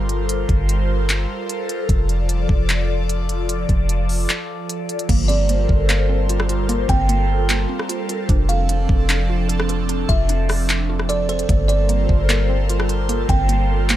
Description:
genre	hip hop, atmospheric cloud-rap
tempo	150 BPM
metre	4/4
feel	half-time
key	unclear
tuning	A4 = 440 Hz
part	airy breathy pad	sustained chords	0.0-14.0 s	F3 to D5	-24 LUFS	equal	chorus, phaser, sidechain pumping
part	soft 808-style bass	bass	0.0-14.0 s	F1 to G1	-19 LUFS	equal	none
part	smooth R&B drum kit	drums	0.1-14.0 s	crash cymbal, handclaps, hi-hat, kick drum, rim click	-21 LUFS	equal	none
part	mallet-like synth pluck	arpeggios	5.1-14.0 s	Bb3 to A4	-29 LUFS	right 2 dB	chorus, phaser, low-pass filter, tape echo
part	buzzing kalimba	melody	5.3-14.0 s	C5 to G5	-26 LUFS	right 3 dB	low-pass filter, tape echo
room	little or no reverb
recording	none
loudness	-17 LUFS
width	side -13 dB against mid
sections	0.0-5.1 A section; 5.1-14.0 B section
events	break 4.3-5.1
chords	0.0 Gm11; 1.9 F6; 5.1 Gm11; 8.3 F6; 11.5 Gm11

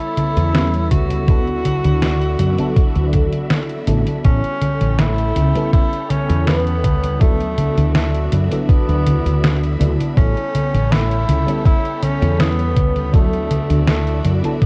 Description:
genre	vaporwave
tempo	81 BPM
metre	4/4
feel	straight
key	D major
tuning	A4 = 440 Hz
part	warm tenor saxophone	melody	0.0-14.7 s	A3 to F#4	-26 LUFS	equal	vintage 12-bit sampler grit, tape echo
part	FM electric piano with soft pad layer	accompaniment	0.0-14.7 s	F#3 to B4	-27 LUFS	equal	phaser, lush chorus, vintage 12-bit sampler grit, tape echo
part	soft string machine	sustained chords	0.0-14.7 s	F#4 to B5	-34 LUFS	equal	ensemble chorus
part	detuned 8-bit digital drum machine	drums	0.0-14.7 s	congas, hi-hat, snare drum	-23 LUFS	equal	none
part	woody fretless electric bass	bass	0.4-14.4 s	A1 to F#2	-21 LUFS	equal	analog chorus
part	electronic kick drum	drums	0.9-14.7 s	none	-17 LUFS	equal	none
room	digital ambience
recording	cassette tape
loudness	-17 LUFS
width	mono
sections	0.0-14.7 A section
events	none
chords	0.0 A9; 1.3 D69; 4.2 A9; 7.2 D69; 10.2 A9; 13.1 D69

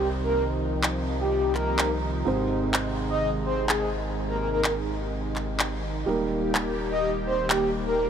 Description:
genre	EDM, festival progressive house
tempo	126 BPM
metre	4/4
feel	straight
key	unclear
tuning	A4 = 440 Hz
part	breathy flute-like synth lead	melody	0.0-8.1 s	G4 to Eb5	-28 LUFS	equal	analog chorus, vintage 12-bit sampler grit, tape echo
part	felt-muted upright piano	accompaniment	0.0-8.1 s	Ab2 to C5	-31 LUFS	right 4 dB	tape echo
part	lush unison pad	sustained chords	0.0-8.1 s	C3 to G4	-31 LUFS	equal	chorus, phaser
part	saturated sub bass	bass	0.0-8.1 s	Eb1 to C2	-32 LUFS	equal	none
part	electronic handclaps	drums	0.8-7.6 s	none	-31 LUFS	equal	small room ambience
room	moderate huge ambient reverb, RT60 5.0 s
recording	none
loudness	-24 LUFS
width	side -8 dB against mid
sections	0.0-8.1 A section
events	none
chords	0.0 Cm; 2.3 Ab; 6.1 Eb

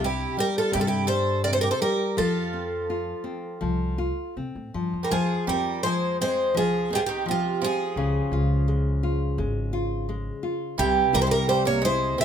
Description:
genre	fado-style ballad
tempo	84 BPM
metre	4/4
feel	rubato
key	F major, F minor from 5.1 s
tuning	A4 = 440 Hz
part	picked twelve-string acoustic guitar	melody	0.0-12.2 s	F4 to E5	-26 LUFS	right 1 dB	none
part	picked twelve-string acoustic guitar	second line	0.0-12.2 s	C3 to Bb4	-31 LUFS	right 8 dB	none
part	nylon-string guitar	accompaniment	0.0-12.2 s	C3 to F4	-28 LUFS	left 3 dB	none
part	upright bass	bass	0.0-12.2 s	Ab1 to C3	-28 LUFS	equal	none
room	moderate studio reverb, RT60 0.5 s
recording	minimal, uncompressed stereo recording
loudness	-22 LUFS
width	side -8 dB against mid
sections	0.0-5.1 A section; 5.1-12.2 B section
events	none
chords	0.0 C5; 2.2 F; 5.1 F5; 8.0 Db; 10.8 C

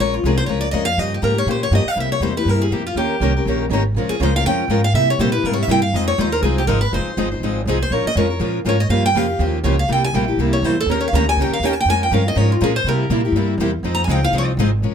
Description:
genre	acoustic string swing (jazz manouche)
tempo	243 BPM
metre	4/4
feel	swing 55% on 8ths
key	F minor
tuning	A4 = 440 Hz
part	picked steel-string acoustic guitar	melody	0.0-14.4 s	F4 to Bb5	-20 LUFS	equal	none
part	picked steel-string acoustic guitar	accompaniment	0.0-14.9 s	C3 to C5	-22 LUFS	left 6 dB	none
part	upright bass	bass	0.0-14.9 s	F1 to C3	-20 LUFS	right 1 dB	none
part	picked steel-string acoustic guitar	accompaniment	3.0-14.7 s	C3 to Bb4	-24 LUFS	right 9 dB	none
room	light reverb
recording	none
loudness	-16 LUFS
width	side -8 dB against mid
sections	0.0-6.9 A section; 6.9-14.8 A section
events	steel-string acoustic guitar solo 0.0-14.8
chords	0.0 Bbm7; 1.0 Gm7b5; 2.0 C7; 3.0 Eb7; 4.0 Bbm7; 4.9 C7; 5.9 Fm7; 7.9 Bbm7; 8.9 Gm7b5; 9.9 C7; 10.9 Eb7; 11.9 Bbm7; 12.9 C7; 13.8 Fm7

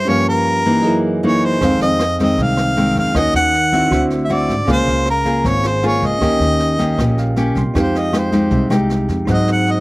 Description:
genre	bossa nova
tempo	156 BPM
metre	4/4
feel	straight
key	unclear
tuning	A4 = 440 Hz
part	warm harmonica	melody	0.0-9.8 s	Bb4 to Gb5	-18 LUFS	equal	none
part	bell-like tine electric piano	accompaniment	0.0-9.8 s	Gb3 to C6	-23 LUFS	right 2 dB	phaser, slapback echo
part	nylon-string guitar	accompaniment	0.0-9.8 s	F2 to Ab4	-18 LUFS	left 1 dB	none
part	upright bass	bass	1.6-9.8 s	Ab1 to Ab2	-20 LUFS	equal	none
part	jazz brush drum kit	drums	1.6-9.7 s	kick drum, rim click, snare drum	-25 LUFS	equal	none
room	little or no reverb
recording	recorded outdoors, with no room sound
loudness	-13 LUFS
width	side -21 dB against mid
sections	0.0-7.7 A section; 7.7-9.8 B section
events	tine electric piano fill 7.0-7.7; harmonica solo 7.7-9.8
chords	0.1 Gm7b5; 0.8 Gb13; 1.6 Fm7; 3.1 Ebm7; 3.9 D9; 4.7 Db6; 6.2 Eb7; 7.7 Fm9; 9.3 Ab7

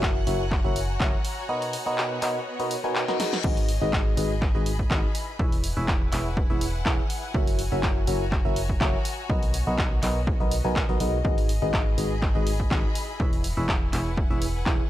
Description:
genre	piano house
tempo	123 BPM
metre	4/4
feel	swing 54% on 16ths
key	G# minor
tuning	A4 = 440 Hz
part	string machine, violins	sustained chords	0.0-3.5 s	F#5 to F#6	-40 LUFS	equal	ensemble chorus, sidechain pumping
part	barking FM electric piano	riff	0.0-14.8 s	B2 to G#5	-29 LUFS	equal	phaser, sidechain pumping, tape echo
part	solid FM bass	bass	0.0-14.8 s	E1 to B1	-28 LUFS	equal	sidechain pumping
part	electronic kick drum	drums	0.0-14.8 s	none	-26 LUFS	equal	none
part	punchy analog drum machine	drums	0.0-14.8 s	crash cymbal, handclaps, hi-hat, snare drum	-32 LUFS	equal	none
part	clear symphonic string section	texture	0.0-14.9 s	B3 to B5	-36 LUFS	left 3 dB	sidechain pumping
part	reverse cymbal	sound effects	2.8-3.4 s	none	-36 LUFS	left 8 dB	none
room	digital ambience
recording	dry, gritty hardware recording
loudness	-22 LUFS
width	side -14 dB against mid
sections	0.0-3.4 A section; 3.4-14.9 A section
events	reverse cymbal 2.8-3.4; drum fill 3.1-3.4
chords	0.0 F#7; 1.5 Bmaj7; 3.4 G#m7; 5.2 E6; 7.3 F#7; 9.3 Bmaj7; 11.2 G#m7; 13.0 E6

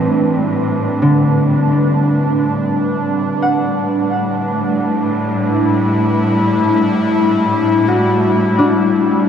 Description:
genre	ambient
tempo	free time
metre	none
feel	none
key	unclear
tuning	A4 = 436 Hz
part	airy breathy pad	sustained chords	0.0-9.3 s	A2 to B4	-15 LUFS	equal	chorus
part	concert harp	arpeggios	0.0-9.3 s	D3 to F#5	-18 LUFS	left 1 dB	diffuse ambient delay
part	rich symphonic cello section	bass	0.0-9.3 s	A2	-20 LUFS	right 1 dB	none
room	wet huge ambient reverb, RT60 8.7 s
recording	dark, warm production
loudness	-13 LUFS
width	side -8 dB against mid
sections	0.0-9.3 A section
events	none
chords	0.0 Am11; 3.4 Em7/A

